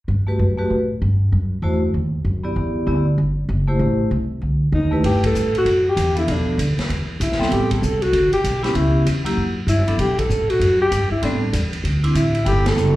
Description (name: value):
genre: jazz, small-group swing and bop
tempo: 194 BPM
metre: 4/4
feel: swing 63% on 8ths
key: G major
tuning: A4 = 440 Hz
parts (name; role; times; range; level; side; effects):
- upright bass; bass; 0.1-13.0 s; F#1 to B2; -20 LUFS; equal; none
- vibraphone with medium hard mallets; accompaniment; 0.3-13.0 s; F3 to D5; -22 LUFS; equal; slapback echo
- breathy alto saxophone; melody; 4.7-13.0 s; D4 to A4; -20 LUFS; equal; slapback echo
- vintage drum kit; drums; 5.0-12.9 s; hi-hat, kick drum, ride cymbal, snare drum; -28 LUFS; equal; none
room: little or no reverb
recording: live gig heard through the venue's PA, club reverb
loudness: -17 LUFS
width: side -16 dB against mid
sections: 0.1-5.0 A section; 5.0-13.0 B section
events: band accent 5.2, 7.7, 10.1, 12.6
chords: 0.1 Gmaj9; 1.3 F#m7b5; 1.9 B; 2.6 Em7; 3.8 Am7; 4.4 D5; 5.0 G69; 6.3 Bm7b5; 6.9 E5; 7.5 Am9; 8.8 C#m7b5; 9.4 Em11; 10.0 B5; 11.2 Am9; 11.8 Dsus2; 12.5 G69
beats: | 0.08 0.39 0.70 1.01 | 1.32 1.63 1.94 2.25 | 2.56 2.87 3.18 3.49 | 3.80 4.11 4.42 4.73 | 5.04 5.35 5.66 5.97 | 6.28 6.59 6.89 7.21 | 7.51 7.82 8.13 8.44 | 8.75 9.06 9.37 9.68 | 9.99 10.30 10.61 10.91 | 11.22 11.53 11.84 12.15 | 12.46 12.77